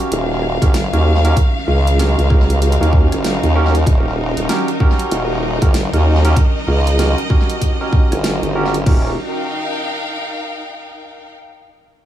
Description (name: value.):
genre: glitch hop.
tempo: 96 BPM.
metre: 4/4.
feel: swing 61% on 16ths.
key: unclear.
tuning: A4 = 438 Hz.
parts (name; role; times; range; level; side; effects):
warbly tape-like pad; sustained chords; 0.0-9.2 s; Eb3 to Eb5; -26 LUFS; equal; chorus, built-in reverb, vintage 12-bit sampler grit, sidechain pumping.
barky tine electric piano; stabs; 0.0-9.1 s; Db4 to Bb4; -22 LUFS; right 1 dB; sidechain pumping, low-pass filter, tape echo.
pop drum kit; drums; 0.0-9.0 s; crash cymbal, hi-hat, rim click, snare drum; -27 LUFS; equal; tape echo.
clear studio string section; texture; 0.0-11.3 s; Eb4 to G5; -24 LUFS; left 1 dB; sidechain pumping.
formant-sweep wobble bass; bass; 0.1-9.2 s; Eb1 to Eb2; -15 LUFS; equal; chorus.
electronic kick drum; drums; 0.6-9.0 s; none; -14 LUFS; equal; none.
room: light reverb.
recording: echo-heavy mix, small room ambience.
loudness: -13 LUFS.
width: side -12 dB against mid.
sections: 0.0-8.9 A section; 8.9-11.4 B section.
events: none.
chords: 0.0 Eb7#9.